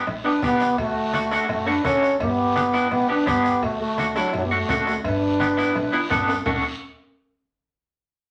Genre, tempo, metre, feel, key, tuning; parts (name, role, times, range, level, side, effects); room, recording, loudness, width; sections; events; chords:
latin, cumbia; 169 BPM; 4/4; straight; D major; A4 = 440 Hz
electric guitar through a small old amp; accompaniment; 0.0-6.6 s; A3 to A4; -26 LUFS; equal; tremolo
upright bass; bass; 0.1-6.6 s; G1 to F#2; -37 LUFS; equal
bombo; percussion; 0.1-6.5 s; -37 LUFS; equal
congas; percussion; 0.1-6.5 s; -37 LUFS; equal
cowbell and timbales; percussion; 0.1-6.5 s; -34 LUFS; equal
guiro; percussion; 0.1-6.5 s; -41 LUFS; equal
clear French horn; melody; 0.2-6.1 s; F#3 to D4; -24 LUFS; equal
accordion; second line; 0.3-6.1 s; D4 to B4; -32 LUFS; equal
wet studio reverb, RT60 0.6 s; nothing above 10.4 kHz; -22 LUFS; mono
0.0-6.5 A section; 6.5-7.9 B section
drum fill 5.9-6.5
0.0 G; 0.8 D; 2.2 G; 3.6 D; 5.0 G; 6.5 D